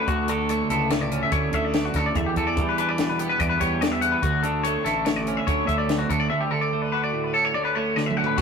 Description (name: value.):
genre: math rock and midwest emo.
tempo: 144 BPM.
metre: 5/4.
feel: straight.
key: D major.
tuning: A4 = 442 Hz.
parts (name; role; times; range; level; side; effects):
twelve-string electric guitar; accompaniment; 0.0-8.4 s; D2 to F#4; -26 LUFS; right 4 dB; none.
twangy electric guitar; arpeggios; 0.0-8.4 s; F#4 to F#5; -24 LUFS; left 3 dB; spring reverb.
fuzz fingered electric bass; bass; 0.1-8.4 s; A1 to E3; -30 LUFS; left 1 dB; overdrive.
compact cocktail drum kit; drums; 0.1-8.4 s; crash cymbal, hi-hat, kick drum, snare drum, toms; -27 LUFS; left 1 dB; none.
room: wet stone room reverb, RT60 1.4 s.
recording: rough rehearsal-room recording.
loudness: -21 LUFS.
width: side -6 dB against mid.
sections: 0.0-8.4 A section.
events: drum fill 8.0-8.4.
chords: 0.1 Dmaj7; 2.2 Em7; 4.2 Aadd11; 6.3 Dmaj7.